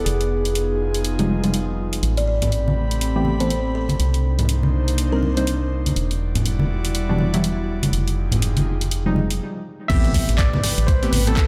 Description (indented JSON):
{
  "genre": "deep house",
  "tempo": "122 BPM",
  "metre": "4/4",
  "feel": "swing 59% on 16ths",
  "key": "unclear",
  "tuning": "A4 = 440 Hz",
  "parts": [
    { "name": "overdriven tine electric piano", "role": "melody", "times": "0.0-1.0, 9.9-11.5 s", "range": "Ab4 to E5", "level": "-28 LUFS", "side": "equal", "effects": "fast tremolo, tape echo" },
    { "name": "airy breathy pad", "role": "sustained chords", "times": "0.0-11.5 s", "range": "G3 to B5", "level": "-31 LUFS", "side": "equal", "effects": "chorus, sidechain pumping" },
    { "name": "organ-like FM bass", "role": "bass", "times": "0.0-11.4 s", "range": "E1 to C2", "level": "-25 LUFS", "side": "equal", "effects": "sidechain pumping" },
    { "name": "house drum kit", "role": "drums", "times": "0.1-11.5 s", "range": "crash cymbal, handclaps, hi-hat, ride cymbal, rim click", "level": "-30 LUFS", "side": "equal", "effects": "overdrive, small room ambience" },
    { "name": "deep mellow chord stab", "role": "stabs", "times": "1.2-11.4 s", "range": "B2 to C5", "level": "-26 LUFS", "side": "equal", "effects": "chorus, sidechain pumping, tape echo" },
    { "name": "buzzing kalimba", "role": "melody", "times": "2.2-5.6 s", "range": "A4 to D5", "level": "-33 LUFS", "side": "equal", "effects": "analog delay" },
    { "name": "congas", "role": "percussion", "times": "2.4-11.2 s", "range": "none", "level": "-27 LUFS", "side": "equal", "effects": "none" },
    { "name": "dusty soul sampler-style drum kit", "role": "drums", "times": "9.9-11.5 s", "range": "hi-hat, snare drum", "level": "-40 LUFS", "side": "equal", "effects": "none" },
    { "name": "electronic kick drum", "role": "drums", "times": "9.9-11.5 s", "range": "none", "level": "-22 LUFS", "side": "equal", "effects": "small room ambience" },
    { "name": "impact", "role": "sound effects", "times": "10.0-11.5 s", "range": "none", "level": "-30 LUFS", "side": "equal", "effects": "none" }
  ],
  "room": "moderate plate reverb, RT60 2.1 s",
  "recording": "dreamy mix soaked in reverb",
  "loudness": "-21 LUFS",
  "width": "mono",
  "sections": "0.0-9.9 A section; 9.9-11.5 B section",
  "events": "filter sweep on synth stab 0.0-9.9; stop 9.4-9.9; drop 9.9-11.5; impact 9.9-11.5",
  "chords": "0.1 Fm9; 2.0 Am9; 4.0 Cm9; 6.0 Em9; 7.9 Fm9; 9.9 Am9"
}